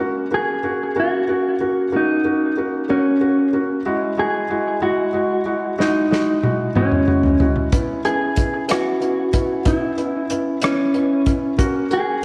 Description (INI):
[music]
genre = six-eight pop ballad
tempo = 62 BPM (dotted quarters)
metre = 6/8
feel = straight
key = unclear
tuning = A4 = 441 Hz
[part]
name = felt-muted upright piano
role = accompaniment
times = 0.0-12.2 s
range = G#3 to F#4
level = -24 LUFS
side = equal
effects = none
[part]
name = mellow electric guitar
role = melody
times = 0.3-12.2 s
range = C#4 to G#4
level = -22 LUFS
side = equal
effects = tape echo
[part]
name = unplugged drum kit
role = drums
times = 5.8-12.1 s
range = hi-hat, kick drum, rim click, snare drum, toms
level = -23 LUFS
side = equal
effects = none
[sound]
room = wet echo chamber reverb, RT60 1.6 s, studio ambience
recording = none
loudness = -19 LUFS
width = mono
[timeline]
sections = 0.0-12.2 A section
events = drum fill 5.8-7.7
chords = 0.0 F#; 3.9 Eadd9; 7.7 C#m7; 11.6 F#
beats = 0.97 | 1.94 2.90 | 3.86 4.82 | 5.79 6.76 | 7.73 8.70 | 9.67 10.63 | 11.59